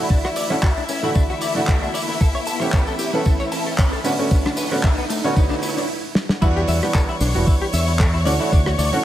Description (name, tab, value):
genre	nu-disco, nu disco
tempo	114 BPM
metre	4/4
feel	swing 55% on 16ths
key	E dorian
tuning	A4 = 440 Hz
part	clear baby grand piano	accompaniment	0.0-9.0 s	D3 to F#5	-24 LUFS	right 2 dB	low-pass filter, digital delay
part	muted studio string section	sustained chords	0.0-9.0 s	E4 to C#6	-28 LUFS	left 3 dB	sidechain pumping, low-pass filter
part	direct-recorded clean electric guitar	riff	0.0-9.0 s	A3 to A5	-27 LUFS	left 4 dB	ensemble chorus, low-pass filter, digital delay
part	riser	sound effects	0.1-5.9 s	none	-31 LUFS	right 2 dB	none
part	picked electric bass with an envelope filter	bass	0.1-8.9 s	E1 to B2	-24 LUFS	equal	high-pass filter
part	electronic kick drum	drums	0.1-8.6 s	none	-17 LUFS	equal	none
part	tambourine	percussion	0.1-9.0 s	none	-34 LUFS	left 1 dB	none
part	damped 70s drum kit	drums	0.2-8.9 s	crash cymbal, handclaps, hi-hat, rim click, snare drum	-26 LUFS	right 1 dB	none
room	light reverb, small room ambience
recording	none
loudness	-17 LUFS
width	side -12 dB against mid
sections	0.0-6.4 A section; 6.4-9.0 B section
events	build-up 0.0-6.4; riser 0.1-5.9; stop 5.9-6.4; drum fill 6.2; drop 6.4-9.0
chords	0.0 D; 2.2 A7; 4.1 Bm7; 6.4 Em7; 8.3 Dmaj7